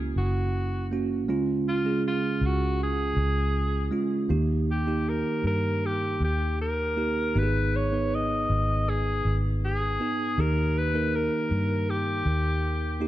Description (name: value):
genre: pop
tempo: 80 BPM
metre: 4/4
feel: straight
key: unclear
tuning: A4 = 439 Hz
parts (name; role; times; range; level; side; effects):
- bell-like tine electric piano; accompaniment; 0.0-13.1 s; G#2 to B4; -28 LUFS; right 2 dB; none
- vintage muted fingered electric bass; bass; 0.0-13.1 s; F#1 to G2; -27 LUFS; equal; none
- edgy alto saxophone; melody; 0.2-13.0 s; E#4 to D#5; -29 LUFS; left 1 dB; ping-pong delay
room: light reverb, small room ambience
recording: dark, warm production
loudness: -24 LUFS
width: side -14 dB against mid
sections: 0.0-13.1 A section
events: none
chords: 0.0 F#; 1.3 C#; 4.3 D#; 7.4 G#m; 10.4 D#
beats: 0.55 | 1.29 2.05 2.80 3.55 | 4.30 5.06 5.83 6.59 | 7.36 8.12 8.88 9.64 | 10.39 11.14 11.89 12.64